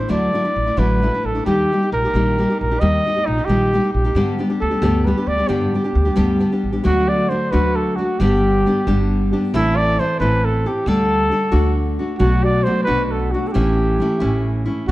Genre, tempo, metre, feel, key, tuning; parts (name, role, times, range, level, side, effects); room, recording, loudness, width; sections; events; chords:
mexican folk, mariachi; 89 BPM (dotted quarters); 6/8; straight; G major; A4 = 440 Hz
mellow trumpet; melody; 0.0-14.9 s; Eb4 to Eb5; -20 LUFS; right 1 dB
nylon-string guitar; accompaniment; 0.0-14.9 s; G2 to A4; -19 LUFS; left 1 dB
upright bass; bass; 0.0-14.9 s; G1 to G2; -21 LUFS; equal
moderate recital hall reverb, RT60 1.4 s; dark, warm production; -15 LUFS; side -17 dB against mid
0.0-6.9 A section; 6.9-14.9 B section
0.0 Dadd9; 1.5 Eb; 4.2 G; 6.9 D; 8.2 G; 9.5 Am; 10.9 Dsus4; 11.5 D; 12.2 Bm7; 13.6 A